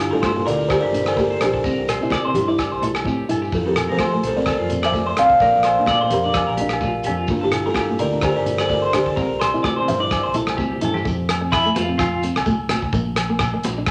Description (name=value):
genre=highlife guitar band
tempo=128 BPM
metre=4/4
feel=swing 54% on 16ths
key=F major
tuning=A4 = 440 Hz
part: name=buzzing kalimba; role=melody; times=0.0-10.8 s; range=D4 to F5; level=-23 LUFS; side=equal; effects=none
part: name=clean electric guitar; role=arpeggios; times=0.0-12.2 s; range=E4 to G5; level=-28 LUFS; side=equal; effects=tremolo
part: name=fingered electric bass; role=bass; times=0.0-13.9 s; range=G1 to F3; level=-30 LUFS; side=equal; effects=none
part: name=warm soul drum kit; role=drums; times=0.0-13.9 s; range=hi-hat, kick drum, rim click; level=-28 LUFS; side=equal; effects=none
part: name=agogo bells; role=percussion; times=0.0-13.9 s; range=none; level=-31 LUFS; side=equal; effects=none
part: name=congas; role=percussion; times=0.0-13.9 s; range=none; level=-32 LUFS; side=equal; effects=none
part: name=nylon-string guitar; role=accompaniment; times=0.1-13.9 s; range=F3 to E4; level=-29 LUFS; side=equal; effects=none
part: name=shekere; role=percussion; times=0.2-13.9 s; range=none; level=-37 LUFS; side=equal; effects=none
room=moderate large studio reverb, RT60 0.8 s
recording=none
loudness=-20 LUFS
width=mono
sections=0.0-11.1 A section; 11.1-13.9 B section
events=drum fill 10.5-11.1; clean electric guitar solo 11.1-13.9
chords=0.0 Gm; 1.6 C; 3.5 F; 5.4 Bb; 7.3 Gm; 9.2 C; 11.1 F; 12.9 Bb